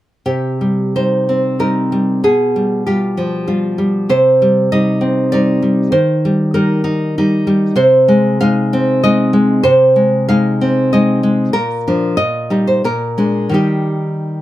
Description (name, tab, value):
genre	romantic piece for solo classical guitar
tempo	82-100 BPM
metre	3/4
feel	rubato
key	C minor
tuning	A4 = 440 Hz
part	nylon-string guitar	solo	0.3-14.4 s	Bb2 to F5	-12 LUFS	equal	none
room	light reverb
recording	none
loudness	-12 LUFS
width	side -14 dB against mid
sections	0.2-14.4 A section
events	none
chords	0.2 Cm; 2.2 G7/B; 4.1 Cm; 5.9 Cm/Eb; 7.8 Ab/C; 11.6 Bb; 12.2 Eb/Bb; 12.9 Bb7; 13.6 Eb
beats	| 0.25 0.96 1.60 | 2.24 2.87 3.49 | 4.11 4.72 5.32 | 5.94 6.54 7.15 | 7.76 8.41 9.04 | 9.64 10.30 10.94 | 11.56 12.20 12.86 | 13.55 14.25